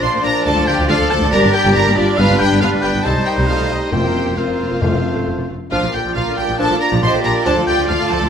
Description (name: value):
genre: quick classical-period movement for symphony orchestra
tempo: 138 BPM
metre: 4/4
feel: straight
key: Bb major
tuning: A4 = 440 Hz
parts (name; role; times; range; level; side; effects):
- warm studio violin section; melody; 0.0-8.3 s; D5 to C6; -23 LUFS; equal; none
- mellow large flute ensemble; second line; 0.0-8.2 s; F4 to Eb5; -26 LUFS; right 1 dB; none
- rich chamber violin section; second line; 0.0-8.3 s; D4 to C5; -24 LUFS; equal; none
- warm clarinet; second line; 0.0-7.6 s; C4 to Eb4; -26 LUFS; left 2 dB; none
- warm oboe; second line; 0.0-8.2 s; D5 to C6; -23 LUFS; left 1 dB; none
- mellow bassoon; accompaniment; 0.0-7.6 s; F3 to Bb3; -25 LUFS; right 2 dB; none
- rich chamber viola section; accompaniment; 0.0-8.3 s; D3 to F4; -25 LUFS; left 1 dB; none
- mellow French horn section; sustained chords; 0.0-8.3 s; F3 to F4; -24 LUFS; left 2 dB; none
- brilliant trumpet; stabs; 0.0-8.3 s; B4 to D5; -25 LUFS; right 2 dB; none
- rich chamber cello section; bass; 0.0-8.3 s; D4 to A4; -24 LUFS; left 2 dB; none
- warm studio double bass section; bass; 0.0-8.3 s; F1 to D2; -20 LUFS; right 1 dB; none
- timpani; percussion; 3.9-5.4 s; F2; -23 LUFS; left 2 dB; none
room: moderate stone room reverb, RT60 1.1 s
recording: none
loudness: -13 LUFS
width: side -8 dB against mid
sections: 0.0-8.3 A section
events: none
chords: 0.5 Dm; 1.3 Gm; 2.2 G; 3.0 Cm; 3.9 Fsus4; 4.8 F; 5.7 Bb; 7.5 Dm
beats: 0.02 | 0.45 0.89 1.32 1.75 | 2.18 2.62 3.05 3.48 | 3.93 4.38 4.82 5.27 | 5.71 6.16 6.59 7.03 | 7.46 7.89